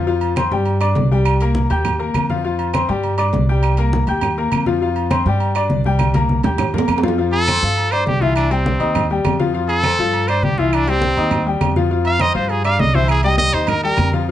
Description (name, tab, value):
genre	latin, salsa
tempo	203 BPM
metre	4/4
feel	straight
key	F major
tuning	A4 = 439 Hz
part	bright upright piano	accompaniment	0.0-14.3 s	E3 to G6	-20 LUFS	left 5 dB	none
part	upright bass	bass	0.0-14.3 s	C2 to G2	-19 LUFS	right 1 dB	none
part	congas	percussion	0.1-14.3 s	none	-23 LUFS	left 1 dB	none
part	agogo bells and timbales	percussion	0.2-14.1 s	none	-24 LUFS	right 6 dB	none
part	claves	percussion	0.4-14.1 s	none	-31 LUFS	right 10 dB	none
part	brilliant trumpet	melody	7.3-14.1 s	C4 to F5	-19 LUFS	right 1 dB	none
room	moderate studio reverb, RT60 0.8 s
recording	nothing above 10.3 kHz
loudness	-15 LUFS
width	side -12 dB against mid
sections	0.0-7.2 A section; 7.2-14.3 B section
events	drum fill 6.0-7.2; trumpet solo 7.2-14.3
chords	0.1 F5; 0.7 G5; 1.3 C5; 1.9 Eb; 2.4 F5; 3.0 G5; 3.6 C5; 4.2 Eb; 4.8 F5; 5.4 G5; 6.0 C5; 6.6 Eb; 7.2 F; 7.8 G5; 8.4 C; 9.0 Eb; 9.5 F; 10.1 G5; 10.7 C; 11.3 Eb; 11.9 F5; 12.5 G5; 13.1 C; 13.7 Eb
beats	| 0.07 0.37 0.67 0.96 | 1.26 1.56 1.85 2.15 | 2.45 2.74 3.04 3.33 | 3.63 3.93 4.22 4.52 | 4.82 5.11 5.41 5.70 | 6.00 6.29 6.59 6.89 | 7.18 7.48 7.77 8.07 | 8.37 8.66 8.96 9.25 | 9.55 9.84 10.14 10.43 | 10.73 11.03 11.32 11.62 | 11.91 12.21 12.50 12.80 | 13.09 13.39 13.69 13.98 | 14.28